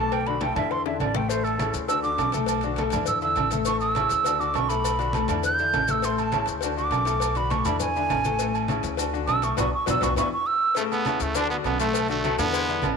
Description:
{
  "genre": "latin, salsa",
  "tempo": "203 BPM",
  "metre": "4/4",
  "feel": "straight",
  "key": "A major",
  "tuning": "A4 = 440 Hz",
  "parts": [
    { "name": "hollow silver concert flute", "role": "melody", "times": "0.0-10.8 s", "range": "A4 to G6", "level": "-26 LUFS", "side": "right 3 dB", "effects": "tape echo" },
    { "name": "bright baby grand piano", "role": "accompaniment", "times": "0.0-12.9 s", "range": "A2 to A4", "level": "-29 LUFS", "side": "left 12 dB", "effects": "none" },
    { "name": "upright bass", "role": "bass", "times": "0.0-13.0 s", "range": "A1 to E2", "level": "-31 LUFS", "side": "equal", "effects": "none" },
    { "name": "agogo bells and timbales", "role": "percussion", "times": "0.1-13.0 s", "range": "none", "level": "-30 LUFS", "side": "right 16 dB", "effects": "none" },
    { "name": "congas", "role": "percussion", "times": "0.1-13.0 s", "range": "none", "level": "-34 LUFS", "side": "equal", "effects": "none" },
    { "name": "cowbell and bongos", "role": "percussion", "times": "0.1-13.0 s", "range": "none", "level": "-35 LUFS", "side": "left 14 dB", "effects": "none" },
    { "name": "maracas", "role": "percussion", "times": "1.3-13.0 s", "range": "none", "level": "-38 LUFS", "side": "left 16 dB", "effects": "none" },
    { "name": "growling trumpet", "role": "melody", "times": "10.8-12.9 s", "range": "A3 to D4", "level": "-26 LUFS", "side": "right 3 dB", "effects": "none" },
    { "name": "breathy baritone saxophone", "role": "second line", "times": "10.8-12.9 s", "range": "C#3 to G#3", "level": "-32 LUFS", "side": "left 12 dB", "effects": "none" }
  ],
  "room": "moderate plate reverb, RT60 3.4 s",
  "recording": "1960s-style stereo with parts hard left and right",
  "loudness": "-22 LUFS",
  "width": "side -5 dB against mid",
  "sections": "0.0-10.8 A section; 10.8-13.0 B section",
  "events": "flute solo 0.0-10.8; drum fill 0.9-1.3, 9.6-10.8; band accent 9.6-10.8",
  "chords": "0.1 Bm7; 0.7 Amadd11; 1.3 A; 1.9 D; 2.5 Bm7; 3.1 Asus4; 3.7 A; 4.3 D; 4.8 Bm7; 5.4 A7sus4; 6.0 A; 6.6 D; 7.2 Bm7; 7.8 E7; 8.4 A; 9.0 D; 9.6 Bm; 10.2 E5; 10.8 A; 11.4 D; 11.9 Bm7"
}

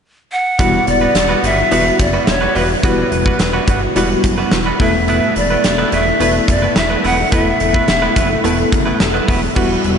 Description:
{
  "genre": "1980s-style pop",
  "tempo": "107 BPM",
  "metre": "4/4",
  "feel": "straight",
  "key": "unclear",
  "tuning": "A4 = 439 Hz",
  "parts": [
    { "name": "breathy bright large pan pipes", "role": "melody", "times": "0.3-8.4 s", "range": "B4 to F#5", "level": "-18 LUFS", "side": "equal", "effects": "analog delay" },
    { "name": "FM electric piano with tremolo", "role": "accompaniment", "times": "0.6-10.0 s", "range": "G3 to A4", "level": "-19 LUFS", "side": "left 2 dB", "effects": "phaser" },
    { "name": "direct-recorded clean electric guitar", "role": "riff", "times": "0.6-9.9 s", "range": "G3 to B4", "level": "-20 LUFS", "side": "right 3 dB", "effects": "lush chorus, analog delay" },
    { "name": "fat analog bass", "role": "bass", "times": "0.6-10.0 s", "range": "E1 to G1", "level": "-20 LUFS", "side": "equal", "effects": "none" },
    { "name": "huge arena drum kit", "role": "drums", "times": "0.6-10.0 s", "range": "crash cymbal, hi-hat, kick drum, snare drum", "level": "-17 LUFS", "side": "equal", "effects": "none" },
    { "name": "string machine, full ensemble", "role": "sustained chords", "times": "9.6-10.0 s", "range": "G3 to E6", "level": "-20 LUFS", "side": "left 2 dB", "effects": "ensemble chorus" }
  ],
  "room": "wet huge ambient reverb, RT60 8.2 s",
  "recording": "dreamy mix soaked in reverb, nothing above 10.8 kHz",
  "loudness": "-12 LUFS",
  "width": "side -7 dB against mid",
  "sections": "0.6-9.6 A section",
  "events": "none",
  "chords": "0.0 N.C.; 0.6 Emadd9; 4.8 Asus2/E"
}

